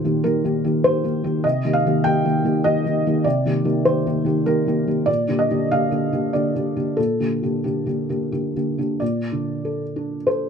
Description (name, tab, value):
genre	neoclassical minimalist piano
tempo	86-101 BPM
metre	3/4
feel	rubato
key	unclear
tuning	A4 = 440 Hz
part	felt-muted upright piano	solo	0.0-10.5 s	Bb2 to G5	-18 LUFS	equal	none
room	little or no reverb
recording	close, detailed microphones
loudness	-18 LUFS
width	side -7 dB against mid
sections	0.0-9.0 A section; 9.0-10.5 B section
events	none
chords	0.0 Eb/Bb; 1.4 Cm7; 5.1 Gm7/Bb; 9.0 Bbmaj7